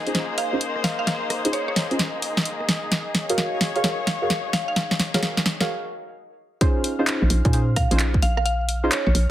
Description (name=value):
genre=UK garage, two-step garage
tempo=130 BPM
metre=4/4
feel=swing 64% on 16ths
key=Bb minor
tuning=A4 = 440 Hz
part: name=warm analog pad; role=sustained chords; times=0.0-9.3 s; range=Eb5 to F6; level=-36 LUFS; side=equal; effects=chorus, sidechain pumping
part: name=deep mellow chord stab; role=stabs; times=0.0-8.9 s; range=Db4 to F5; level=-26 LUFS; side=right 1 dB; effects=chorus, tape echo
part: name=muted studio string section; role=texture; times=0.0-5.7 s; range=Bb3 to Db5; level=-30 LUFS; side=left 4 dB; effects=sidechain pumping
part: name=house drum kit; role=drums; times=0.1-9.3 s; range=handclaps, hi-hat, rim click, snare drum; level=-24 LUFS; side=equal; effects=none
part: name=mallet-like synth pluck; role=melody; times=0.4-9.1 s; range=Db5 to F5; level=-28 LUFS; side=right 1 dB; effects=chorus, tape echo
part: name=electronic kick drum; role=drums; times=6.6-8.2 s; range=none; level=-21 LUFS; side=equal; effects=none
part: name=hollow knocking FM bass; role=bass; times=7.2-9.3 s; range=Bb1 to Bb2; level=-21 LUFS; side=equal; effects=none
room=light reverb, digital ambience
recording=heavily compressed radio sound, multiband compression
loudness=-20 LUFS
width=side -13 dB against mid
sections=0.0-6.6 A section; 6.6-9.3 B section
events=build-up 0.0-6.6; drum fill 0.0-5.7; filter sweep on synth stab 0.0-6.6; break 5.7-6.6; drop 6.6-9.3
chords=0.0 Bbm11; 2.7 Ebm11; 6.6 Bbm11